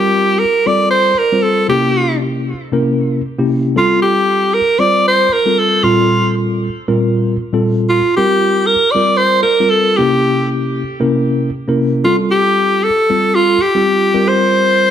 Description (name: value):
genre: jazz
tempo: 116 BPM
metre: 4/4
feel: swing 55% on 16ths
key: unclear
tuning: A4 = 440 Hz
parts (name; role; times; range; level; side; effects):
- edgy alto saxophone; melody; 0.0-14.9 s; F4 to D5; -12 LUFS; right 1 dB; tape echo
- mellow tine electric piano; accompaniment; 0.0-14.9 s; Bb2 to C5; -16 LUFS; left 1 dB; medium stereo tremolo
room: wet large studio reverb, RT60 1.1 s, small room ambience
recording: none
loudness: -11 LUFS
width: side -9 dB against mid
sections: 0.0-14.9 A section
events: none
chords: 0.0 Gm9; 1.7 C7b9; 3.8 Fadd9; 5.8 Bbsus2; 8.2 C5; 10.0 C7b9; 12.1 Fadd9; 14.1 C5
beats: 0.38 0.90 1.42 | 1.94 2.46 2.98 3.50 | 4.02 4.54 5.06 5.58 | 6.10 6.62 7.13 7.65 | 8.17 8.69 9.21 9.72 | 10.24 10.76 11.28 11.80 | 12.31 12.83 13.35 13.87 | 14.38 14.90